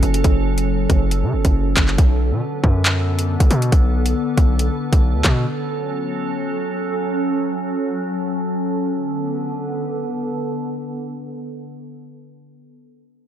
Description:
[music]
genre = hip hop, drill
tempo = 138 BPM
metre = 4/4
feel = half-time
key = B minor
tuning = A4 = 437 Hz
[part]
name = glassy FM pad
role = sustained chords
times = 0.0-12.3 s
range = D3 to A4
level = -22 LUFS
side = equal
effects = ensemble chorus, built-in reverb, low-pass filter
[part]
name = distorted 808-style bass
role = bass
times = 0.0-5.5 s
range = F#1 to C#3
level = -18 LUFS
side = equal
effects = distortion
[part]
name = drill drum kit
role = drums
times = 0.0-5.4 s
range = handclaps, hi-hat, kick drum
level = -16 LUFS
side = equal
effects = none
[sound]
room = light reverb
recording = none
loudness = -17 LUFS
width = side -10 dB against mid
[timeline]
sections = 0.0-2.0 A section; 2.0-8.9 B section; 8.9-12.4 C section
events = none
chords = 0.0 F#m; 2.0 Bm7; 5.5 F#m; 8.9 Bm7

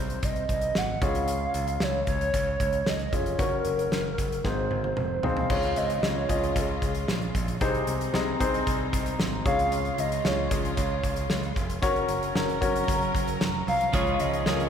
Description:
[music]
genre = piano-driven pop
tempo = 114 BPM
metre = 4/4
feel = straight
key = Db major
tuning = A4 = 440 Hz
[part]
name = hollow clarinet-like synth lead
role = melody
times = 0.0-14.7 s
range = Ab4 to Gb5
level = -29 LUFS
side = right 1 dB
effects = chorus
[part]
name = warm grand piano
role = accompaniment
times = 0.0-14.7 s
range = Ab2 to Eb5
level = -30 LUFS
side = left 2 dB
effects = none
[part]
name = modern bright picked electric bass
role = bass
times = 0.0-14.7 s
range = F1 to Db2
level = -32 LUFS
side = equal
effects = none
[part]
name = modern studio drum kit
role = drums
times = 0.1-14.7 s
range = crash cymbal, hi-hat, kick drum, snare drum, toms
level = -30 LUFS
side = equal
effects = none
[part]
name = rich studio string section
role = sustained chords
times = 5.5-14.7 s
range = C3 to Bb4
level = -35 LUFS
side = right 2 dB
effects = none
[part]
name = twelve-string electric guitar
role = riff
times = 13.9-14.7 s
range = Db3 to Ab4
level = -30 LUFS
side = right 4 dB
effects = spring reverb
[sound]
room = wet church reverb, RT60 3.4 s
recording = recorded in a church or concert hall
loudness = -24 LUFS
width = side -8 dB against mid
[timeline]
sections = 0.0-5.5 A section; 5.5-14.7 B section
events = drum fill 4.4-5.5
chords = 0.0 Ab/C; 1.0 Db; 3.4 Gb; 4.4 Ab; 5.5 Db; 7.6 Ab/C; 9.5 Db; 11.8 Gb; 13.9 Db

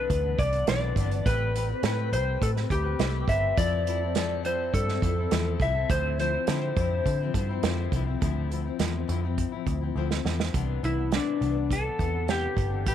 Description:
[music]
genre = indie pop, bedroom pop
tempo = 103 BPM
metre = 4/4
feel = straight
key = C major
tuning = A4 = 437 Hz
[part]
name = electric slide guitar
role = melody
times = 0.0-12.9 s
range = D4 to E5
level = -29 LUFS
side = left 1 dB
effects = lush chorus, tape echo
[part]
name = fingerpicked steel-string acoustic guitar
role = accompaniment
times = 0.0-12.9 s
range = C3 to B4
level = -33 LUFS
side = left 12 dB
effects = wide subtle chorus, vibrato effect
[part]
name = vintage muted picked electric bass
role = bass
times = 0.0-12.9 s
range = G1 to D3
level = -28 LUFS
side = equal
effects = none
[part]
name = unplugged drum kit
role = drums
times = 0.1-12.9 s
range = hi-hat, kick drum, snare drum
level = -30 LUFS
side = right 4 dB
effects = none
[sound]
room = light reverb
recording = 1960s-style stereo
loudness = -24 LUFS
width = side -10 dB against mid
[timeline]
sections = 0.0-8.2 A section; 8.2-10.5 B section; 10.5-12.9 C section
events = drum fill 10.0-10.5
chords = 0.0 Cmaj9; 1.3 Am9; 3.6 Fmaj7; 5.9 Dm9; 10.5 Cmaj9

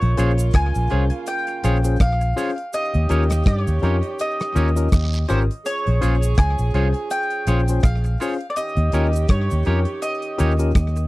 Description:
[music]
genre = lovers rock reggae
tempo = 82 BPM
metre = 4/4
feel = swing 57% on 16ths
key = Bb dorian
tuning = A4 = 441 Hz
[part]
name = mandolin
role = melody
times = 0.0-11.1 s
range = C5 to Ab5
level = -26 LUFS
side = equal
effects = tape echo
[part]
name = bright saxophone section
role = second line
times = 0.0-11.1 s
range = Db3 to Ab4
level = -31 LUFS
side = right 4 dB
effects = none
[part]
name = vintage muted fingered electric bass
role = bass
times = 0.0-11.1 s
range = Ab1 to G2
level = -19 LUFS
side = equal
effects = none
[part]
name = damped 70s drum kit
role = drums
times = 0.0-11.1 s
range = hi-hat, kick drum, rim click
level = -19 LUFS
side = equal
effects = none
[part]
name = barky tine electric piano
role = accompaniment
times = 0.2-11.0 s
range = Db4 to C5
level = -24 LUFS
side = left 4 dB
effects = overdrive
[part]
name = twangy electric guitar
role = stabs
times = 0.2-11.0 s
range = Eb4 to Db5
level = -28 LUFS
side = right 4 dB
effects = none
[part]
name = cabasa and guiro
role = percussion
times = 0.2-11.1 s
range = none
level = -39 LUFS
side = right 4 dB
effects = slapback echo
[sound]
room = little or no reverb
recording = dry, close 1970s-style studio recording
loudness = -18 LUFS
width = side -19 dB against mid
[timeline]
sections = 0.0-11.1 A section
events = none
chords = 0.0 Bbm7; 2.7 Eb7; 5.7 Bbm7; 8.6 Eb7

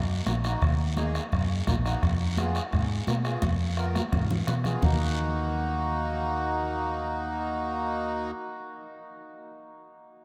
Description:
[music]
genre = latin, cumbia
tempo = 171 BPM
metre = 4/4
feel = straight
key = Eb minor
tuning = A4 = 439 Hz
[part]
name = fingered electric bass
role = bass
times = 0.0-8.3 s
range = Bb1 to Cb3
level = -32 LUFS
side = equal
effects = none
[part]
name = accordion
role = accompaniment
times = 0.3-8.3 s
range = Bb3 to Cb5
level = -34 LUFS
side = equal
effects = none
[part]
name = bombo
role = percussion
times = 0.3-4.9 s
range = none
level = -32 LUFS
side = equal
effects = none
[part]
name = congas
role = percussion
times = 0.3-4.9 s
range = none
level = -37 LUFS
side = equal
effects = none
[part]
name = guiro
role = percussion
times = 0.3-4.9 s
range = none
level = -44 LUFS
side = equal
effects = none
[sound]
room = moderate cathedral reverb, RT60 6.7 s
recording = in a vast, echoing space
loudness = -28 LUFS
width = mono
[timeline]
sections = 0.0-4.8 A section; 4.8-7.6 B section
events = drum fill 3.4-4.8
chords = 0.0 Ebm; 2.0 Fdim; 4.8 Ebm

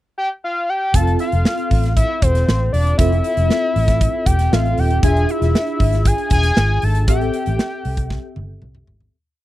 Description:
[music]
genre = polished 1980s jazz-funk pop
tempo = 117 BPM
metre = 4/4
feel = straight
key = F major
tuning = A4 = 435 Hz
[part]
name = fat analog lead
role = melody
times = 0.2-8.6 s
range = C5 to A5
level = -21 LUFS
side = left 1 dB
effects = none
[part]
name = tine electric piano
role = accompaniment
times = 0.9-9.1 s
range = C4 to F5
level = -24 LUFS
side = left 1 dB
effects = medium stereo tremolo, ensemble chorus
[part]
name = vintage muted fingered electric bass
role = bass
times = 0.9-9.1 s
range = Eb1 to C2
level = -18 LUFS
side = equal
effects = none
[part]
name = modern studio drum kit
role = drums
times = 0.9-9.1 s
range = hi-hat, kick drum, snare drum, toms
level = -18 LUFS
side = equal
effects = none
[sound]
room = little or no reverb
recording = dry, close 1970s-style studio recording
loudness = -15 LUFS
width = side -15 dB against mid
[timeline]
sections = 0.0-0.9 pickup bar; 0.9-9.1 verse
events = fade-out 7.1-9.1; drum fill 8.1-9.1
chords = 0.0 N.C.; 0.9 Fmaj7; 5.0 E7b9; 7.1 Am7

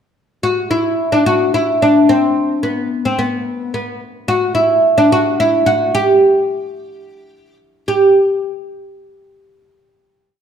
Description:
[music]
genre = Turkish makam ensemble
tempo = 217 BPM (eighths)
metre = 7/8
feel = straight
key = G makam rast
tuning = A4 = 440 Hz
[part]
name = oud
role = solo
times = 0.4-8.1 s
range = B3 to G4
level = -12 LUFS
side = equal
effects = none
[sound]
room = moderate recital hall reverb, RT60 1.4 s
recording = dark, warm production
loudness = -12 LUFS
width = side -8 dB against mid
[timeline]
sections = 0.1-7.9 A section; 7.9-9.8 final note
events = none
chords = none

